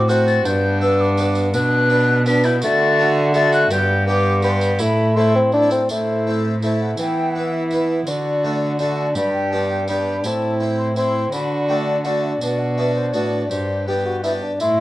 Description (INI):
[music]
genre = classical, renaissance-style consort dance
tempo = 166 BPM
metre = 3/4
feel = straight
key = unclear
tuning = A4 = 439 Hz
[part]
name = concert flute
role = melody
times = 0.0-14.8 s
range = B4 to B6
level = -24 LUFS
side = left 2 dB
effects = none
[part]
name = rich violin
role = second line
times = 0.0-14.8 s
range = D4 to G4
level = -26 LUFS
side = right 3 dB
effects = none
[part]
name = harpsichord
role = accompaniment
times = 0.0-14.8 s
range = G2 to C5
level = -24 LUFS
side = equal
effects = none
[part]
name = mellow bassoon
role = accompaniment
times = 0.0-14.8 s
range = A3 to G4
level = -21 LUFS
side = left 1 dB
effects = none
[part]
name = rich cello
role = bass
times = 0.0-14.8 s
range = G2 to E3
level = -22 LUFS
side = right 1 dB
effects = none
[part]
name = tambourine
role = percussion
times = 0.1-14.8 s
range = none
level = -35 LUFS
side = right 2 dB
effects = none
[sound]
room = moderate stone room reverb, RT60 1.2 s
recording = worn, warbling old tape, cassette tape, warbly pitch drift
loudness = -16 LUFS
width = side -16 dB against mid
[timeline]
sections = 0.0-5.9 A section; 5.9-14.6 B section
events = none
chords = 0.5 G; 1.5 Bm; 2.6 D; 3.7 G; 4.8 Am; 7.0 Em; 8.1 D; 9.2 G; 10.2 Am; 11.3 D; 12.4 Bm; 13.5 G